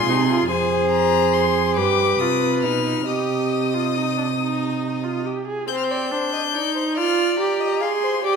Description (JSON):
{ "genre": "classical, baroque-style fugue for string quartet", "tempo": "47 BPM (dotted quarters)", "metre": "6/8", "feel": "straight", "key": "C minor", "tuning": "A4 = 439 Hz", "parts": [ { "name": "rich violin", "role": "melody", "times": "0.0-8.4 s", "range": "Ab5 to G6", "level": "-25 LUFS", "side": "left 10 dB", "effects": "none" }, { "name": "warm violin", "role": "second line", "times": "0.0-8.4 s", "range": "Ab4 to F5", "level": "-25 LUFS", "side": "left 4 dB", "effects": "none" }, { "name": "rich viola", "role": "accompaniment", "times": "0.0-8.4 s", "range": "C4 to Ab4", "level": "-22 LUFS", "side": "right 3 dB", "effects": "none" }, { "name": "dark cello", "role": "bass", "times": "0.0-5.2 s", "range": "F2 to C3", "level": "-24 LUFS", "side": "right 5 dB", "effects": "none" } ], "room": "wet concert hall reverb, RT60 2.2 s", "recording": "minimal, uncompressed stereo recording", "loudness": "-18 LUFS", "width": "side -6 dB against mid", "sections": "0.0-5.7 A section; 5.7-8.4 B section", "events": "none", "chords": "0.5 Fmadd11; 1.8 G7; 3.1 Cm; 7.0 Fm" }